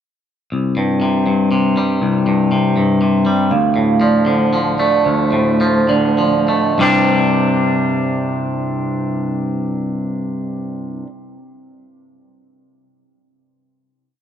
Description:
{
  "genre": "post-rock",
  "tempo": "95-120 BPM",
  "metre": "3/4",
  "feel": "straight",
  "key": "unclear",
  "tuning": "A4 = 440 Hz",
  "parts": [
    { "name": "twangy electric guitar", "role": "arpeggios", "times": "0.5-11.1 s", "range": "C2 to D4", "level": "-14 LUFS", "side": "left 1 dB", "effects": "spring reverb, analog delay" },
    { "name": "vibraphone with soft mallets", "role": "arpeggios", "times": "3.5-7.1 s", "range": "C5 to F5", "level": "-20 LUFS", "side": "right 5 dB", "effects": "analog delay" }
  ],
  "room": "moderate huge ambient reverb, RT60 4.6 s",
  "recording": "dark, warm production",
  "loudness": "-14 LUFS",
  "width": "side -9 dB against mid",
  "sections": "0.5-6.8 A section; 6.8-10.6 final chord",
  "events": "slowing down 3.5-6.8",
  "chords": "0.5 C5; 3.5 Dm7; 6.8 Csus2",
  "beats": "| 0.51 1.00 1.50 | 2.00 2.50 3.00 | 3.50 4.01 4.52 | 5.05 5.60 6.18 | 6.79 7.42 8.05 | 8.69 9.32 9.95"
}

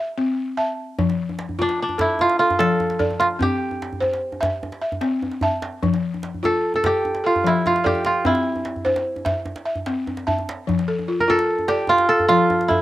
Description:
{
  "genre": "west african traditional, West African string and xylophone music",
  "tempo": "99 BPM (dotted quarters)",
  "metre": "12/8",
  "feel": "straight",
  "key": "F major",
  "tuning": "A4 = 440 Hz",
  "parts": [
    { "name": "balafon", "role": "arpeggios", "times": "0.0-12.8 s", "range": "F3 to A5", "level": "-23 LUFS", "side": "left 2 dB", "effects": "slapback echo" },
    { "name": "djembe", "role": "percussion", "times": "1.0-12.8 s", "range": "none", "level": "-28 LUFS", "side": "right 2 dB", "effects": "none" },
    { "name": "kora", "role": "melody", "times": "1.6-12.8 s", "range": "D4 to Bb4", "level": "-18 LUFS", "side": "right 1 dB", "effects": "none" }
  ],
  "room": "little or no reverb",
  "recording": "recorded outdoors, with no room sound",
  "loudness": "-18 LUFS",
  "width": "side -15 dB against mid",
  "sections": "0.0-10.7 A section; 10.7-12.8 A section",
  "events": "none",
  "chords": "0.0 C; 1.0 F; 3.4 C; 5.8 F; 8.3 C; 10.7 F",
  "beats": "0.38 | 0.98 1.59 2.19 2.80 | 3.40 4.01 4.61 5.22 | 5.83 6.43 7.04 7.65 | 8.25 8.86 9.46 10.07 | 10.68 11.28 11.89 12.49"
}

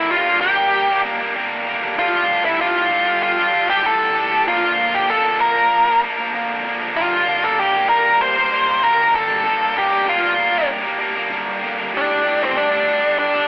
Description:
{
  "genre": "rock",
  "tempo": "96 BPM",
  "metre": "4/4",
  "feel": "straight",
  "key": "G minor",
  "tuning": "A4 = 440 Hz",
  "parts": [
    { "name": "octave-fuzz lead guitar", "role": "melody", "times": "0.0-13.5 s", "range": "C4 to C5", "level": "-15 LUFS", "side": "equal", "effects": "distortion" },
    { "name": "distorted electric guitar", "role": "riff", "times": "0.0-13.5 s", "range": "G2 to Bb4", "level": "-20 LUFS", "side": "equal", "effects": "distortion" }
  ],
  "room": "moderate stone room reverb, RT60 1.1 s",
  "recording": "band playing live in one room, telephone sound",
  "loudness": "-15 LUFS",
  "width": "side -21 dB against mid",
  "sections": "0.0-13.5 A section",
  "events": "none",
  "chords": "0.0 Gm; 2.0 Dsus4/A; 4.5 Bb; 7.0 Gm7; 11.9 Dsus4/A",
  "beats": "0.11 0.73 1.35 | 1.98 2.60 3.22 3.85 | 4.47 5.09 5.71 6.34 | 6.96 7.58 8.21 8.83 | 9.45 10.07 10.70 11.32 | 11.94 12.56 13.18"
}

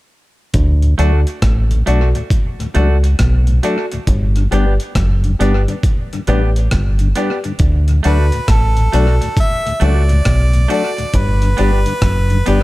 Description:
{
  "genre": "roots reggae",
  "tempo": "68 BPM",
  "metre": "4/4",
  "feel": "swing 64% on 16ths",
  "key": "D major",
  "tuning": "A4 = 440 Hz",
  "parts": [
    { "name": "deep dub fingered electric bass", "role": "bass", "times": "0.5-12.6 s", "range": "F#1 to D2", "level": "-13 LUFS", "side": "equal", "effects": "none" },
    { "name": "breakbeat sampler-style drum kit", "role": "drums", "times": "0.5-12.6 s", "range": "hi-hat, kick drum, rim click", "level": "-18 LUFS", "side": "equal", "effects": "overdrive, analog delay" },
    { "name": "mellow tonewheel organ", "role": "accompaniment", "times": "0.8-12.6 s", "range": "D2 to D4", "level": "-23 LUFS", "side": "left 2 dB", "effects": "slow rotary speaker" },
    { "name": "semi-hollow electric guitar", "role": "accompaniment", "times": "1.0-12.6 s", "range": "A3 to G4", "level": "-27 LUFS", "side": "right 5 dB", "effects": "tape echo" },
    { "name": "clear upright piano", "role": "stabs", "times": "1.0-12.6 s", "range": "F#4 to D5", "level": "-23 LUFS", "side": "left 3 dB", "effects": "none" },
    { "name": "clear harmonica", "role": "melody", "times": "8.1-12.6 s", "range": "A4 to E5", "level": "-21 LUFS", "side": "right 1 dB", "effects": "tape echo" }
  ],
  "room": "little or no reverb",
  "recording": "echo-heavy mix",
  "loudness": "-12 LUFS",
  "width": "side -18 dB against mid",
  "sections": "0.5-7.6 A section; 7.6-12.6 B section",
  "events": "none",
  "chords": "0.5 D; 4.1 G; 7.6 D; 11.1 G",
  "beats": "| 0.54 1.42 2.31 3.19 | 4.07 4.96 5.84 6.72 | 7.60 8.49 9.37 10.25 | 11.14 12.02"
}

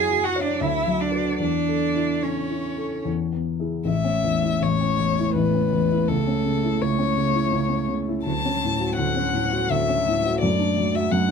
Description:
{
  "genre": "classical, slow romantic movement for piano trio",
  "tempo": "72-86 BPM",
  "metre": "3/4",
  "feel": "rubato",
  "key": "A major",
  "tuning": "A4 = 440 Hz",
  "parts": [
    { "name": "rich violin", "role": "melody", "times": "0.0-11.3 s", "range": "A4 to A5", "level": "-26 LUFS", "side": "left 6 dB", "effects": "none" },
    { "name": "rich cello", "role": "second line", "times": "0.0-11.3 s", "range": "F#3 to G#4", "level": "-26 LUFS", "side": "right 8 dB", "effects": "none" },
    { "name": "warm baby grand piano", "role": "accompaniment", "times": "0.0-11.3 s", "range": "A1 to C#5", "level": "-23 LUFS", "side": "left 2 dB", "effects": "none" }
  ],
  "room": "light reverb",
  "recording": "minimal, uncompressed stereo recording",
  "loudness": "-20 LUFS",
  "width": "side -6 dB against mid",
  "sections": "0.0-3.9 A section; 3.9-11.3 B section",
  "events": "none",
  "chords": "0.0 F#5; 0.6 Bm/D; 1.4 A/E; 3.1 E; 3.9 A; 6.1 A/C#; 8.3 Dmaj7; 10.4 D/F#",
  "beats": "0.61 | 1.40 2.23 3.06 | 3.87 4.63 5.37 | 6.10 6.83 7.54 | 8.27 8.99 9.71 | 10.43 11.13"
}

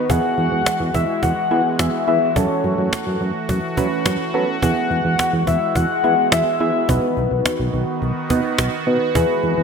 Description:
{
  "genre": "synth-pop",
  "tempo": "106 BPM",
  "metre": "4/4",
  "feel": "straight",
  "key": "E major",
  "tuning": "A4 = 442 Hz",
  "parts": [
    { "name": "soft octave-layered synth lead", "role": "melody", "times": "0.0-9.6 s", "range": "B4 to F#5", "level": "-20 LUFS", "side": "left 4 dB", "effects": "chorus, phaser, ping-pong delay" },
    { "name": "soft electric-piano-like synth keys", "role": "accompaniment", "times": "0.0-9.6 s", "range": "B3 to B4", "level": "-24 LUFS", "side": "right 7 dB", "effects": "chorus" },
    { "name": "sweeping resonant pad", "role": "sustained chords", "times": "0.0-9.6 s", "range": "D#3 to F#4", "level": "-25 LUFS", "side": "right 1 dB", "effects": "chorus" },
    { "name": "solid FM bass", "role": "bass", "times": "0.1-9.6 s", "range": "B1 to F#3", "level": "-21 LUFS", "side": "equal", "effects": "none" },
    { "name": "cajon", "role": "drums", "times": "0.1-9.5 s", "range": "none", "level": "-22 LUFS", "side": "equal", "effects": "none" }
  ],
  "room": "moderate lush hall reverb, RT60 1.8 s",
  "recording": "bright 1980s-style digital production",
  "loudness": "-17 LUFS",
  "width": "side -6 dB against mid",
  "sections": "0.0-9.6 A section",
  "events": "none",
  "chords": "0.1 Eadd9; 2.4 F#m7; 4.6 Eadd9; 6.9 B",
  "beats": "| 0.10 0.66 1.23 1.79 | 2.36 2.93 3.49 4.06 | 4.62 5.19 5.76 6.32 | 6.89 7.45 8.02 8.59 | 9.15"
}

